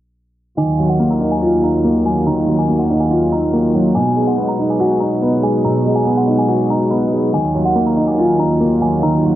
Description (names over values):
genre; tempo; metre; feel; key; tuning
hip hop; 142 BPM; 4/4; half-time; Eb minor; A4 = 440 Hz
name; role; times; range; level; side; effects
dark detuned synth bell; melody; 0.6-9.3 s; Gb5 to B5; -23 LUFS; equal; chorus, phaser, cassette tape
dark concert grand piano; accompaniment; 0.6-9.4 s; B2 to F#4; -15 LUFS; equal; cassette tape
pipe organ, strings celeste; sustained chords; 0.6-9.4 s; Eb2 to F4; -20 LUFS; right 1 dB; cassette tape
room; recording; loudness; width
light reverb; home recording on cassette, low-pass filter; -13 LUFS; side -13 dB against mid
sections
0.6-9.4 A section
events
none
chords
0.6 Ebmadd9; 4.0 B6; 7.3 Ebmadd9